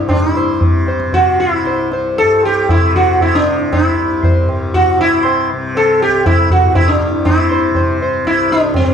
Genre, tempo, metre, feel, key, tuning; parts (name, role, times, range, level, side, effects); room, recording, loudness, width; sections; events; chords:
indian classical, Hindustani; 118 BPM; 7/4; straight; C raga yaman; A4 = 440 Hz
sitar; melody; 0.0-8.9 s; C4 to C5; -13 LUFS; equal
tanpura; drone; 0.0-8.9 s; C2 to C3; -21 LUFS; left 2 dB
tabla; percussion; 0.1-8.9 s; -16 LUFS; right 1 dB
moderate recital hall reverb, RT60 1.5 s; -11 LUFS; side -7 dB against mid
0.0-8.9 A section
speeding up 0.0-8.9